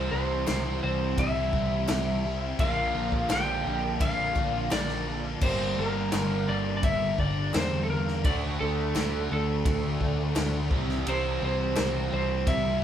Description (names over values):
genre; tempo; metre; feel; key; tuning
classic rock; 85 BPM; 4/4; straight; unclear; A4 = 440 Hz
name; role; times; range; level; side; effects
electric slide guitar; melody; 0.0-12.8 s; A4 to G5; -30 LUFS; left 1 dB; none
octave-fuzz lead guitar; second line; 0.0-12.8 s; A3 to G4; -40 LUFS; right 2 dB; none
tonewheel organ; sustained chords; 0.0-12.8 s; D4 to C5; -46 LUFS; left 1 dB; none
overdriven semi-hollow guitar; riff; 0.0-12.8 s; G2 to G4; -33 LUFS; right 5 dB; none
overdriven semi-hollow guitar; riff; 0.0-12.8 s; G2 to D4; -34 LUFS; equal; phaser
tight distorted guitar; riff; 0.0-12.8 s; G2 to E4; -39 LUFS; left 6 dB; distortion
modern bright picked electric bass; bass; 0.0-12.8 s; G1 to E2; -32 LUFS; equal; none
vintage drum kit; drums; 0.5-12.6 s; crash cymbal, kick drum, ride cymbal, snare drum; -31 LUFS; equal; none
group handclap; percussion; 0.5-11.9 s; none; -42 LUFS; left 4 dB; none
room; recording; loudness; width
moderate studio reverb, RT60 0.8 s; band playing live in one room; -25 LUFS; side -10 dB against mid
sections
0.0-12.8 A section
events
none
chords
0.0 C; 2.6 Bb; 5.4 Gm; 8.2 D; 10.7 C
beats
0.47 1.18 1.89 | 2.59 3.30 4.01 4.71 | 5.42 6.12 6.83 7.54 | 8.24 8.95 9.65 10.36 | 11.06 11.77 12.47